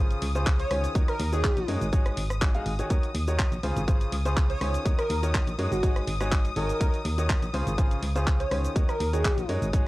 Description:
piano house; 123 BPM; 4/4; swing 54% on 16ths; Eb dorian; A4 = 439 Hz
dark studio string section; sustained chords; 0.0-9.9 s; Eb6; -37 LUFS; left 3 dB; sidechain pumping
clear upright piano; riff; 0.0-9.9 s; Db3 to F5; -33 LUFS; equal; sidechain pumping
solid FM bass; bass; 0.0-9.9 s; Ab1 to Gb2; -28 LUFS; equal; sidechain pumping
house drum kit; drums; 0.1-9.8 s; handclaps, hi-hat, rim click, shaker; -34 LUFS; equal
electronic kick drum; drums; 0.5-9.8 s; -25 LUFS; equal
airy dreamy lead; melody; 0.6-9.5 s; Gb4 to Db5; -32 LUFS; equal; chorus, tape echo
little or no reverb; dry, gritty hardware recording, cassette tape; -24 LUFS; side -18 dB against mid
0.0-9.9 A section
0.0 Dbmaj7; 1.0 Ebm7; 1.9 Ab7sus4; 2.9 Ebm7; 3.6 Dbmaj7; 4.9 Ebm7; 5.8 Ab7sus4; 6.8 Ebm7; 7.5 Dbmaj7; 8.8 Ebm7

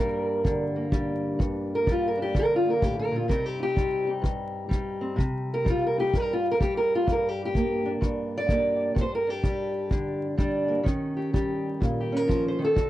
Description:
acoustic country blues, solo or duo; 127 BPM; 4/4; swing 64% on 8ths; G minor; A4 = 439 Hz
fingerpicked steel-string acoustic guitar; melody; 0.0-12.9 s; G2 to D5; -25 LUFS; equal
kick drum; drums; 0.4-12.9 s; -26 LUFS; equal
little or no reverb; dry, close 1970s-style studio recording, vinyl crackle, lossy compression artefacts; -24 LUFS; side -14 dB against mid
0.0-12.9 A section
steel-string acoustic guitar solo 0.0-12.9
0.0 Gm; 3.3 Cm; 7.1 Gm; 10.9 Eb7

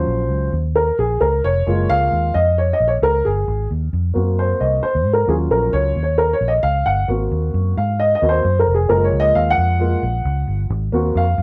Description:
uptempo 1960s-style soul; 133 BPM; 4/4; straight; A4 = 440 Hz
dark upright piano; accompaniment; 0.0-11.4 s; F3 to Gb5; -20 LUFS; equal
vintage muted fingered electric bass; bass; 0.0-11.4 s; F1 to Ab2; -22 LUFS; equal
moderate studio reverb, RT60 0.6 s; -18 LUFS; mono
0.0-11.4 A section
upright piano solo 0.0-11.4
0.0 Ebm7; 1.7 Gbmaj7 (rootless); 3.5 Ab7; 5.3 Ebm7; 7.1 Ab7; 8.9 Gbmaj7; 10.7 Ab7

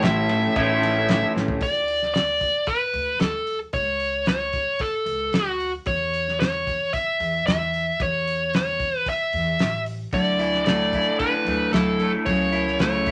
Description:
folk rock and heartland rock; 112 BPM; 4/4; straight; A4 = 440 Hz
dark smooth lead guitar; melody; 0.0-13.1 s; F#4 to E5; -25 LUFS; equal; overdrive
picked steel-string acoustic guitar; accompaniment; 0.0-1.6, 10.1-13.1 s; A2 to E4; -29 LUFS; equal
tonewheel organ; sustained chords; 0.0-1.6 s; barely audible
electric guitar through a small old amp; riff; 0.0-1.6, 10.1-13.1 s; A2 to E4; -26 LUFS; equal
upright bass; bass; 0.0-13.1 s; A1 to E2; -35 LUFS; equal
cloth-damped thuddy drum kit; drums; 0.0-13.1 s; hi-hat, kick drum, ride cymbal, snare drum, toms; -29 LUFS; equal
light reverb; -23 LUFS; mono
0.0-1.6 A section; 1.6-13.1 B section
drum fill 1.3
0.0 A; 1.6 Bm/D; 3.7 A/C#; 5.9 A (rootless); 10.1 Dadd9; 12.3 A6/C#

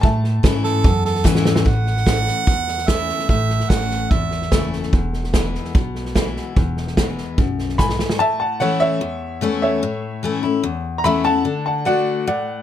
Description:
honky-tonk and classic country; 147 BPM; 4/4; straight; A major; A4 = 440 Hz
clear upright piano; melody; 0.0-0.8, 7.8-12.6 s; C#5 to B5; -21 LUFS; equal
picked steel-string acoustic guitar; accompaniment; 0.0-12.6 s; E2 to F#4; -23 LUFS; left 6 dB
upright bass; bass; 0.0-8.0 s; E1 to A2; -23 LUFS; right 1 dB
natural country drum kit; drums; 0.0-8.2 s; hi-hat, kick drum, snare drum; -19 LUFS; right 1 dB
warm harmonica; second line; 0.6-4.7 s; A4 to F#5; -23 LUFS; right 7 dB
little or no reverb; -17 LUFS; side -11 dB against mid
0.0-1.7 A section; 1.7-8.2 B section; 8.2-12.6 A section
drum fill 1.3-1.7, 7.8-8.2; harmonica solo 1.7-8.2
0.0 A; 4.9 E; 8.2 A; 11.5 D

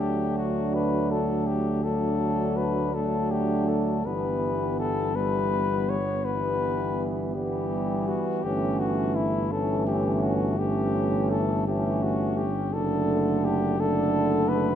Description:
classical, hymn-like piece for brass band; 55 BPM (dotted quarters); 12/8; rubato; D major; A4 = 440 Hz
dark cornet; melody; 0.0-14.8 s; E4 to C#5; -29 LUFS; left 6 dB
warm French horn section; second line; 0.0-14.8 s; B3 to D4; -31 LUFS; right 6 dB
clear euphonium; accompaniment; 0.0-14.8 s; D3 to F#3; -32 LUFS; right 2 dB
warm euphonium; accompaniment; 0.0-14.8 s; G3 to A3; -31 LUFS; left 1 dB
mellow tuba; bass; 0.0-14.8 s; F#1 to D2; -29 LUFS; right 1 dB
moderate scoring stage reverb, RT60 1.8 s; -23 LUFS; side -9 dB against mid
0.0-14.8 A section
0.0 D; 4.1 Em/G; 8.4 A7/G; 12.7 D/F#

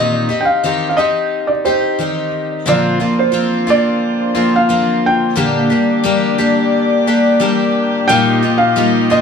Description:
acoustic folk duo or small band; 89 BPM; 4/4; straight; Bb major; A4 = 441 Hz
felt-muted upright piano; melody; 0.0-9.2 s; C5 to G5; -16 LUFS; right 1 dB; analog delay
picked twelve-string acoustic guitar; accompaniment; 0.0-9.2 s; Bb2 to G4; -14 LUFS; left 1 dB
warm chamber string section; sustained chords; 2.6-9.2 s; Bb2 to Eb5; -19 LUFS; left 2 dB
wet small room ambience, RT60 0.5 s; heard from further back in the room; -12 LUFS; side -6 dB against mid
0.0-9.2 A section
felt piano solo 0.0-9.2
0.0 Cm7/Bb; 2.7 Bbadd9; 5.4 Gm/Bb; 8.1 Ebadd9/Bb

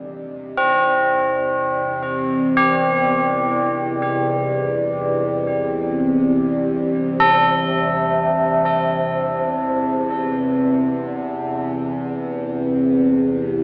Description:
dark ambient drone; free time; A4 = 441 Hz
deep dark ambient pad; sustained chords; 0.0-13.6 s; G4 to D#5; -31 LUFS; equal; chorus, built-in reverb
overtone-sweeping drone; drone; 0.0-13.6 s; E2 to C3; -23 LUFS; equal; chorus, built-in reverb
tubular bells; arpeggios; 0.6-13.6 s; C4 to A4; -22 LUFS; equal; tape echo
wet lush hall reverb, RT60 2.9 s; dreamy mix soaked in reverb, AM radio sound; -19 LUFS; mono
0.0-13.6 A section
filter sweep on synth drone 0.0-13.6
0.0 Cmadd9

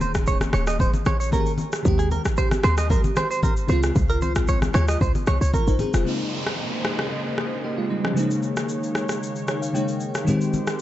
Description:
afrobeats; 114 BPM; 4/4; straight; Eb mixolydian; A4 = 435 Hz
crystalline FM electric piano; accompaniment; 0.0-10.8 s; Db3 to G5; -26 LUFS; left 1 dB; chorus, phaser
direct-recorded clean electric guitar; riff; 0.0-5.7 s; Ab4 to Eb5; -27 LUFS; right 4 dB; wide subtle chorus, digital delay
short 808-style bass; bass; 0.0-6.0 s; Eb1 to Eb2; -22 LUFS; equal
afro-pop drum kit; drums; 0.0-10.8 s; kick drum, rim click, shaker; -25 LUFS; equal
congas; percussion; 0.0-5.9, 10.3-10.7 s; -29 LUFS; left 2 dB
warm analog pad; sustained chords; 6.1-10.8 s; Db3 to Eb5; -30 LUFS; left 1 dB; chorus
downlifter; sound effects; 6.1-10.3 s; -33 LUFS; right 1 dB
light reverb, digital ambience; nothing above 8.0 kHz; -20 LUFS; side -13 dB against mid
0.0-6.1 A section; 6.1-10.8 B section
FM electric piano fill 9.2-10.3
0.0 Eb7sus4; 1.9 Abmaj7/Eb; 3.7 Dbmaj7; 6.1 Bbm11; 8.2 Eb7sus4; 10.3 Abmaj7/Eb

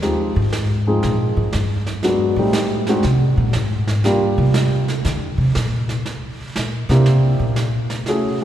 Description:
jazz piano trio; 119 BPM; 4/4; swing 67% on 8ths; C minor; A4 = 441 Hz
warm baby grand piano; melody; 0.0-8.4 s; F3 to Ab4; -20 LUFS; equal
brushed snare drum and snare drum; drums; 0.0-8.4 s; -27 LUFS; right 2 dB
upright bass; bass; 0.4-8.0 s; G2 to D3; -18 LUFS; equal
wet church reverb, RT60 3.0 s; recorded in a church or concert hall; -16 LUFS; side -11 dB against mid
0.0-8.4 A section
upright bass solo 0.0-8.4
0.0 Fm7; 2.0 Am7b5; 3.0 Ab; 4.0 Gm7; 6.1 C7

